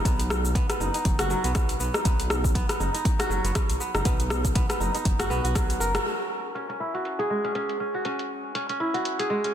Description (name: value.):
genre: afro house.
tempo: 120 BPM.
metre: 4/4.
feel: swing 57% on 16ths.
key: C# dorian.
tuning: A4 = 440 Hz.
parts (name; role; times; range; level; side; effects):
kora; arpeggios; 0.0-9.5 s; F#3 to A#4; -28 LUFS; right 1 dB; sidechain pumping, low-pass filter, dub echo.
dark detuned saw bass; bass; 0.1-6.0 s; F#1 to B1; -28 LUFS; equal; sidechain pumping.
deep house drum kit; drums; 0.1-9.5 s; hi-hat, rim click, shaker; -29 LUFS; left 1 dB; overdrive, low-pass filter on perc, low-pass filter on snare, low-pass filter on hats, low-pass filter on room.
electronic kick drum; drums; 0.1-5.7 s; none; -25 LUFS; equal; overdrive.
room: light reverb, digital ambience.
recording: dense, heavily limited modern master.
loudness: -23 LUFS.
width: side -10 dB against mid.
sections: 0.0-6.1 A section; 6.1-9.5 B section.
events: band accent 5.9; filter sweep on drum 6.1-9.5; filter sweep on kora 6.1-9.5.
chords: 0.0 B; 6.1 C#m.